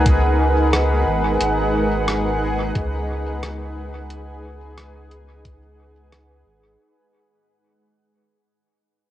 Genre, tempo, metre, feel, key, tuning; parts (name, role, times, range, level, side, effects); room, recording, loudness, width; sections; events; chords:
ambient dub; 89 BPM; 4/4; swing 60% on 16ths; G# minor; A4 = 444 Hz
granular cloud pad; sustained chords; 0.0-6.8 s; G#3 to F#5; -22 LUFS; right 1 dB; built-in reverb, cassette tape
warm sub bass; bass; 0.0-6.8 s; G#1 to C#2; -23 LUFS; equal
bubbling stepped-filter texture; texture; 0.0-6.8 s; G#4; -27 LUFS; left 2 dB; chorus, built-in reverb, cassette tape
electronic kick drum; drums; 0.1-5.6 s; -19 LUFS; equal; cassette tape
lo-fi sampler-style drum kit; drums; 0.1-6.3 s; hi-hat, rim click; -26 LUFS; equal; cassette tape, dub echo
light reverb; home recording on cassette; -17 LUFS; side -12 dB against mid
0.0-6.8 A section
fade-out 0.0-6.8
0.0 G#m7